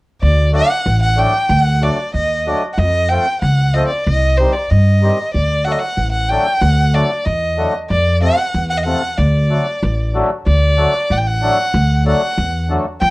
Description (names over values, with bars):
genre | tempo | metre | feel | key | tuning
klezmer | 94 BPM | 2/4 | straight | unclear | A4 = 440 Hz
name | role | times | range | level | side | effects
clear violin | melody | 0.2-13.1 s | C5 to G5 | -17 LUFS | equal | none
upright bass | bass | 0.2-13.1 s | A1 to G2 | -15 LUFS | equal | none
mellow accordion | accompaniment | 0.5-12.9 s | C3 to D4 | -19 LUFS | left 2 dB | none
room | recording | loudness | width
light reverb | worn, warbling old tape, cassette tape, warbly pitch drift | -13 LUFS | side -21 dB against mid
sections
0.2-10.5 A section; 10.5-13.1 A section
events
none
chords
0.2 D; 2.8 F; 4.1 Cm; 5.3 D; 7.9 F; 9.2 D